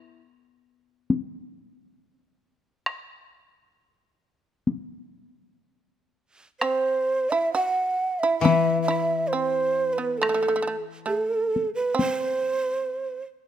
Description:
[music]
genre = japanese traditional, Japanese chamber music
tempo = 59-71 BPM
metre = 4/4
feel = rubato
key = unclear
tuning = A4 = 440 Hz
[part]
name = koto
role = accompaniment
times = 0.0-0.2, 8.4-11.1 s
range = E3 to E4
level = -26 LUFS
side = left 10 dB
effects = none
[part]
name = solo taiko drums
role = percussion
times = 1.1-12.2 s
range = none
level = -26 LUFS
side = left 3 dB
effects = none
[part]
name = breathy mellow shakuhachi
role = melody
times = 6.6-13.2 s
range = A4 to F#5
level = -24 LUFS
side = right 2 dB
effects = none
[part]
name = shamisen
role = second line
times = 6.6-13.2 s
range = A3 to F#4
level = -30 LUFS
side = right 5 dB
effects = none
[sound]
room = little or no reverb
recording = close, detailed microphones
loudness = -22 LUFS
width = side -10 dB against mid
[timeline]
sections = 0.0-6.6 A section; 6.6-13.5 B section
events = none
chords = none

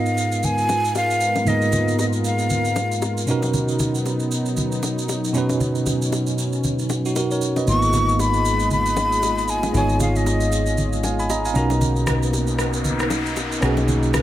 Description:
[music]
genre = amapiano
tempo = 116 BPM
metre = 4/4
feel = swing 58% on 16ths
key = G# dorian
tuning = A4 = 444 Hz
[part]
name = breathy jazz flute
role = melody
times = 0.0-3.2, 7.7-10.9 s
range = D#5 to C#6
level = -22 LUFS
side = left 1 dB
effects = digital delay
[part]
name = bell-like tine electric piano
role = accompaniment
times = 0.0-14.2 s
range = G#2 to B5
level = -23 LUFS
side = right 2 dB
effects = fast stereo tremolo
[part]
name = warm analog pad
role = sustained chords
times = 0.0-14.2 s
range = F#3 to D#5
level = -28 LUFS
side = left 2 dB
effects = chorus
[part]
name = electronic shaker and rim click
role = drums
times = 0.1-14.2 s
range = none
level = -30 LUFS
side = right 2 dB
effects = none
[part]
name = congas and bongos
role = percussion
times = 0.4-14.2 s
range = none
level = -27 LUFS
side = left 2 dB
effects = none
[part]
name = hollow-body short-scale fingered electric bass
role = bass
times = 7.7-14.2 s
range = G#1 to B1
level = -22 LUFS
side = equal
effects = none
[part]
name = noise sweep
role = sound effects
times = 12.3-14.2 s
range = none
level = -30 LUFS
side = left 3 dB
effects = none
[sound]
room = light reverb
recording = none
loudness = -18 LUFS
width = side -13 dB against mid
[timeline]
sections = 0.0-14.2 A section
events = tine electric piano fill 11.0-11.8; noise sweep 12.3-14.2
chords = 0.0 G#m69; 3.3 Bmaj7; 7.7 G#m69; 11.6 Bmaj7

